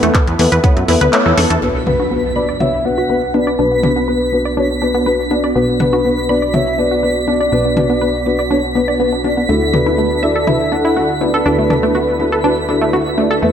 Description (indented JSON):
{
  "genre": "progressive house",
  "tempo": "122 BPM",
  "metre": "4/4",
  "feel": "straight",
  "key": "B minor",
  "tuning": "A4 = 440 Hz",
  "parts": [
    { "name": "filtered supersaw swell", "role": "sustained chords", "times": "0.0-13.5 s", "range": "D3 to B4", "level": "-23 LUFS", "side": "right 2 dB", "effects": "sidechain pumping, low-pass filter" },
    { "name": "wide unison pluck", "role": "arpeggios", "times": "0.0-13.5 s", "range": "A3 to B5", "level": "-20 LUFS", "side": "right 2 dB", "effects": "vintage 12-bit sampler grit, sidechain pumping, dub echo" },
    { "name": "felt-muted upright piano", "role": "stabs", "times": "0.0-13.5 s", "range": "B3 to D5", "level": "-17 LUFS", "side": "left 2 dB", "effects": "sidechain pumping, low-pass filter, dub echo" },
    { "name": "plucky analog bass", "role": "bass", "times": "0.0-13.5 s", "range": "B1 to F#2", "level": "-22 LUFS", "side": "equal", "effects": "tube saturation, sidechain pumping" },
    { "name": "house drum kit", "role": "drums", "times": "0.0-1.6 s", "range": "handclaps, hi-hat", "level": "-19 LUFS", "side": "equal", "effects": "none" },
    { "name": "electronic congas and toms", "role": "percussion", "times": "0.0-13.4 s", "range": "none", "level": "-21 LUFS", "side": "left 2 dB", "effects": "sidechain pumping on toms, sidechain pumping on perc" },
    { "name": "electronic kick drum", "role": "drums", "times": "0.1-0.7 s", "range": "none", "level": "-13 LUFS", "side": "equal", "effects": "none" },
    { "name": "impact and riser", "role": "sound effects", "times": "1.6-3.6, 13.4-13.5 s", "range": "none", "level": "-27 LUFS", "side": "right 1 dB", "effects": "none" },
    { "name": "twinkling granular texture", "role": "texture", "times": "1.6-13.5 s", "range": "B6", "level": "-26 LUFS", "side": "right 1 dB", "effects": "built-in reverb, sidechain pumping" },
    { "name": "soft octave-layered synth lead", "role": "melody", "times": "1.9-13.2 s", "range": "B4 to F#5", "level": "-20 LUFS", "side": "left 1 dB", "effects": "chorus, sidechain pumping, dub echo" }
  ],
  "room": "moderate lush hall reverb, RT60 1.6 s",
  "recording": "none",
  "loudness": "-12 LUFS",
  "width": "side -8 dB against mid",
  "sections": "0.0-1.6 A section; 1.6-13.5 B section",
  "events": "filter sweep on synth pluck 0.0-1.6; filter sweep on supersaw synth 0.0-1.6, 1.6-13.5; kick drops out 1.1-1.6; band accent 1.1; impact 1.6-3.6; filter sweep on felt piano 1.6-13.5",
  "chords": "0.0 Esus4; 1.6 Bm; 9.5 Dadd9"
}